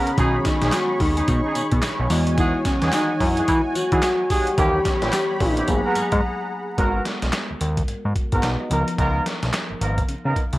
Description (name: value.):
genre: R&B, new jack swing.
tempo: 109 BPM.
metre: 4/4.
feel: swing 61% on 16ths.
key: G# minor.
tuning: A4 = 435 Hz.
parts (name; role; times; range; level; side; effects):
soft octave-layered synth lead; melody; 0.0-6.5 s; C#4 to G#4; -24 LUFS; left 1 dB; chorus, tremolo, slapback echo.
mellow FM electric piano; accompaniment; 0.0-10.6 s; D#3 to D#5; -30 LUFS; equal; chorus, phaser.
warm analog pad; sustained chords; 0.0-6.8 s; F#4 to C#6; -28 LUFS; equal; chorus.
dark horn section; stabs; 0.0-10.4 s; B3 to A#4; -26 LUFS; right 1 dB; slapback echo.
boom bap sampler-style drum kit; drums; 0.1-10.6 s; handclaps, hi-hat, kick drum, snare drum, tambourine; -24 LUFS; equal; none.
fat analog bass; bass; 0.2-10.6 s; G#1 to E3; -23 LUFS; equal; none.
room: light reverb, digital ambience.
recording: vinyl crackle.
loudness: -19 LUFS.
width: side -17 dB against mid.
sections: 0.0-6.8 A section; 6.8-10.6 B section.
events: break 6.2-6.8.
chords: 0.2 B69; 2.1 Emaj9; 4.6 D#7b9b13; 5.7 G#m9; 8.7 C#13.